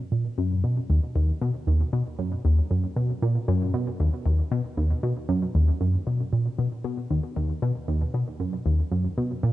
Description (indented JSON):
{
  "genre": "ambient",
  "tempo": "116 BPM",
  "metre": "4/4",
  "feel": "straight",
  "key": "unclear",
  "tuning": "A4 = 440 Hz",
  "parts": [
    { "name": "tight sequenced synth", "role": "solo", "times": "0.0-9.5 s", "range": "D#2 to B2", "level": "-23 LUFS", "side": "equal", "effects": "chorus, tape echo" }
  ],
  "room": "little or no reverb",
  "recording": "cassette tape, nothing above 10.5 kHz",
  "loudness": "-23 LUFS",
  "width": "side -15 dB against mid",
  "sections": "0.0-9.5 A section",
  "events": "none",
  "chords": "none"
}